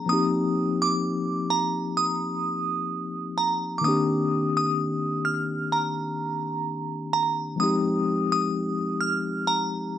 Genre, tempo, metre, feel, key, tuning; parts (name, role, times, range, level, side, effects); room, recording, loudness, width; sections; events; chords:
R&B; 64 BPM; 4/4; swing 54% on 16ths; C minor; A4 = 440 Hz
glassy synth bell; melody; 0.0-10.0 s; Bb5 to F6; -26 LUFS; right 2 dB; chorus, phaser, slapback echo
mellow tine electric piano; accompaniment; 0.0-10.0 s; Eb3 to G4; -26 LUFS; left 2 dB; medium stereo tremolo
light reverb; -23 LUFS; side -10 dB against mid
0.0-10.0 A section
0.1 Eb69; 3.8 Cm9; 7.6 Fm9